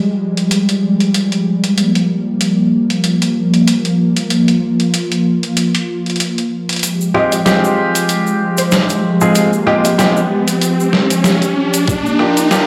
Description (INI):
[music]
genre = glitch hop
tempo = 95 BPM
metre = 4/4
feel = swing 56% on 16ths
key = F minor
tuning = A4 = 440 Hz
[part]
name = warm analog pad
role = sustained chords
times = 0.0-12.7 s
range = F3 to G4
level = -17 LUFS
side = equal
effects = chorus, sidechain pumping
[part]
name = boom bap sampler-style drum kit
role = drums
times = 0.4-12.7 s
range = hi-hat, rim click, snare drum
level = -21 LUFS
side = equal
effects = none
[part]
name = egg shaker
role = percussion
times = 6.8-12.7 s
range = none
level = -28 LUFS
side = equal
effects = none
[part]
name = riser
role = sound effects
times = 9.0-12.7 s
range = none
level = -22 LUFS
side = equal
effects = none
[part]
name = woody wave-folded pluck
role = melody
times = 7.1-9.9 s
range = C5 to Eb5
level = -24 LUFS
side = equal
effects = ensemble chorus, digital delay
[part]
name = clear grand piano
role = stabs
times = 7.1-12.7 s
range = Ab3 to Ab4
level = -18 LUFS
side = equal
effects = sidechain pumping, low-pass filter, digital delay
[part]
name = electronic kick drum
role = drums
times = 11.9-12.0 s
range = none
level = -22 LUFS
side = equal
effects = none
[sound]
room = wet plate reverb, RT60 2.3 s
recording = played on a big sound system in a bare room, large studio reverb, high-pass filter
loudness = -14 LUFS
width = mono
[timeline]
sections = 0.0-6.8 A section; 6.8-12.7 B section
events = build-up 6.8-12.7; riser 9.0-12.7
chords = 0.0 Fmadd9; 1.8 Gm7; 6.8 Fmadd9; 11.9 Gm7